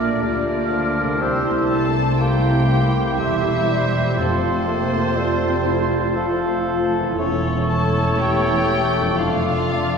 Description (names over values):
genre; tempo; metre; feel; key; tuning
classical, slow romantic movement for symphony orchestra; 60 BPM; 3/4; rubato; F major; A4 = 438 Hz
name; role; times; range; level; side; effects
muted chamber violin section; melody; 0.0-10.0 s; C5 to A5; -28 LUFS; left 3 dB; none
mellow clarinet; second line; 0.0-10.0 s; D4 to G4; -30 LUFS; right 1 dB; none
mellow hollow silver concert flute; second line; 0.0-10.0 s; A5 to F6; -29 LUFS; left 1 dB; none
muted studio violin section; second line; 0.0-10.0 s; C4 to A4; -29 LUFS; left 3 dB; none
warm oboe; second line; 0.0-10.0 s; G4 to C5; -29 LUFS; right 1 dB; none
mellow bassoon; accompaniment; 0.0-10.0 s; F3 to Bb3; -27 LUFS; right 1 dB; none
muted chamber viola section; accompaniment; 0.0-10.0 s; G3 to G4; -28 LUFS; right 2 dB; none
mellow French horn section; sustained chords; 0.0-10.0 s; G3 to F4; -27 LUFS; left 2 dB; none
concert harp; arpeggios; 0.0-10.0 s; E2 to D5; -29 LUFS; left 4 dB; none
bright trumpet; stabs; 0.0-10.0 s; C5 to D5; -28 LUFS; right 2 dB; none
muted studio cello section; bass; 0.0-10.0 s; E2 to D3; -26 LUFS; right 1 dB; none
muted studio double bass section; bass; 0.0-10.0 s; E1 to D2; -26 LUFS; right 2 dB; none
timpani; percussion; 4.2-5.6 s; F2; -30 LUFS; left 2 dB; none
room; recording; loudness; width
wet concert hall reverb, RT60 1.9 s; heard from further back in the room; -17 LUFS; side -6 dB against mid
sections
0.0-10.0 A section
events
none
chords
0.0 Bbmaj7; 1.2 C7; 4.2 F; 7.2 A7/E; 9.2 Dm/F